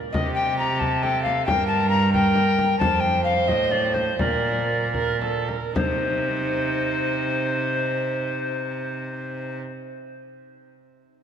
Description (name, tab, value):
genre	classical, renaissance-style consort dance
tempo	72-90 BPM (dotted quarters)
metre	6/8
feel	straight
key	C dorian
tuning	A4 = 440 Hz
part	mellow hollow alto recorder	melody	0.1-9.6 s	C5 to Bb5	-24 LUFS	left 4 dB	none
part	dark violin	second line	0.1-9.6 s	Eb4 to C5	-27 LUFS	right 5 dB	none
part	rich cello	bass	0.1-9.6 s	F2 to C3	-26 LUFS	right 2 dB	none
part	frame drum	percussion	0.1-6.0 s	none	-30 LUFS	left 1 dB	none
room	wet church reverb, RT60 4.0 s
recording	none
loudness	-20 LUFS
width	side -8 dB against mid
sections	0.0-5.8 A section; 5.8-9.1 B section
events	slowing down 2.1-5.8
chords	0.1 C5; 1.5 Gm; 2.8 F; 4.2 Bb; 5.8 Cm